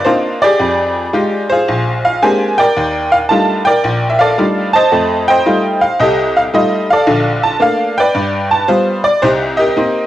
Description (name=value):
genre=solo jazz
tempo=111 BPM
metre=4/4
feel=swing 67% on 8ths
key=Bb major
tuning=A4 = 441 Hz
part: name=tack piano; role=solo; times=0.0-10.1 s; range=Bb1 to A5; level=-11 LUFS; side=equal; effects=cassette tape
room=wet spring reverb, RT60 1.9 s, studio ambience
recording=home recording on cassette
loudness=-11 LUFS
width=side -13 dB against mid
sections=0.0-10.1 A section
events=none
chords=0.0 Cm11; 0.6 Fm9; 1.7 Bb13; 2.8 Ebmaj9#11; 4.9 F9; 7.1 Bbmaj7; 8.1 G7; 9.2 Cm7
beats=0.06 | 0.60 1.14 1.68 2.21 | 2.75 3.29 3.83 4.37 | 4.91 5.45 5.99 6.53 | 7.07 7.61 8.14 8.68 | 9.22 9.76